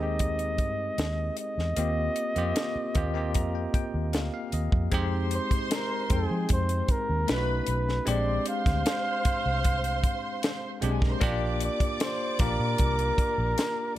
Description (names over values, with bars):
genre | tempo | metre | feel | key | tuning
lush 1970s-style soul | 76 BPM | 4/4 | straight | unclear | A4 = 441 Hz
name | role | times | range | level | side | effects
breathy flugelhorn | melody | 0.0-14.0 s | Ab4 to F5 | -31 LUFS | right 1 dB | none
barky tine electric piano | accompaniment | 0.0-14.0 s | Ab3 to Bb5 | -33 LUFS | left 2 dB | medium stereo tremolo
vintage muted fingered electric bass | bass | 0.0-13.5 s | Bb1 to F3 | -29 LUFS | equal | none
tight funk drum kit | drums | 0.2-13.8 s | hi-hat, kick drum, snare drum | -28 LUFS | equal | none
warm studio violin section | second line | 4.9-13.9 s | G4 to D6 | -35 LUFS | right 1 dB | none
room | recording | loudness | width
studio reverb | none | -25 LUFS | side -14 dB against mid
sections
0.0-4.9 A section; 4.9-14.0 B section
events
tine electric piano fill 2.6-4.9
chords
0.0 Fm9 (rootless); 1.8 Eb69; 4.9 Fm7; 7.3 B9; 8.1 Bb13 (rootless); 11.2 Bb6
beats
0.20 0.98 | 1.77 2.56 3.35 4.13 | 4.92 5.71 6.49 7.28 | 8.07 8.86 9.64 10.43 | 11.22 12.01 12.79 13.58